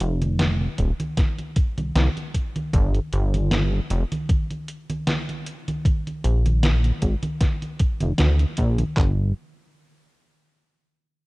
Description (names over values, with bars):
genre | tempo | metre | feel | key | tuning
vaporwave | 77 BPM | 4/4 | swing 55% on 16ths | unclear | A4 = 437 Hz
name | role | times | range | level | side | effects
chorused synth bass | bass | 0.0-9.3 s | Eb1 to D2 | -20 LUFS | equal | none
detuned 8-bit digital drum machine | drums | 0.0-8.9 s | congas, hi-hat, snare drum | -26 LUFS | equal | vintage 12-bit sampler grit, small room reverb
detuned 8-bit digital drum machine | drums | 0.8-9.2 s | handclaps, kick drum | -21 LUFS | equal | vintage 12-bit sampler grit, small room reverb
room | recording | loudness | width
digital ambience | rough home demo mix | -20 LUFS | side -22 dB against mid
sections
0.0-9.0 A section; 9.0-11.3 B section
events
none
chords
none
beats
0.40 1.18 1.95 | 2.73 3.51 4.29 5.07 | 5.85 6.63 7.41 8.19 | 8.97